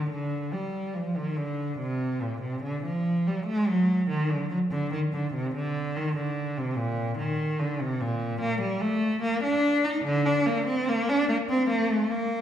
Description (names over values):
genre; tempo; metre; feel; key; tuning
classical, baroque-style suite movement for unaccompanied cello; 72 BPM; 4/4; rubato; unclear; A4 = 435 Hz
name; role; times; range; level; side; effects
rich cello; solo; 0.0-12.4 s; Bb2 to Eb4; -25 LUFS; equal; none
room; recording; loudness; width
wet scoring stage reverb, RT60 1.8 s; recorded in a church or concert hall; -25 LUFS; side -10 dB against mid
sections
0.0-12.4 A section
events
none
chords
none